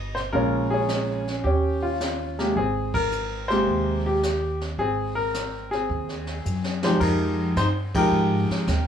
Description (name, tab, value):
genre	jazz piano trio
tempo	108 BPM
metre	4/4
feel	swing 69% on 8ths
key	Ab major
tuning	A4 = 439 Hz
part	clear baby grand piano	melody	0.0-8.9 s	C3 to G5	-23 LUFS	left 1 dB	none
part	upright bass	bass	0.0-8.9 s	G1 to Ab2	-28 LUFS	right 1 dB	none
part	jazz brush drum kit	drums	0.2-8.9 s	brushed snare drum, crash cymbal, hi-hat, kick drum, ride cymbal, snare drum	-33 LUFS	right 2 dB	none
room	moderate club reverb, RT60 0.8 s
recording	studio ambience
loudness	-22 LUFS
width	side -8 dB against mid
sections	0.0-7.0 A section; 7.0-8.9 B section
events	band accent 2.8, 7.8; drum fill 6.4-7.0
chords	0.3 Bbm7; 1.4 Eb9; 2.6 Abmaj9; 7.0 Fm9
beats	| 0.33 0.89 1.45 2.00 | 2.56 3.11 3.67 4.22 | 4.78 5.34 5.89 6.45 | 7.00 7.56 8.11 8.67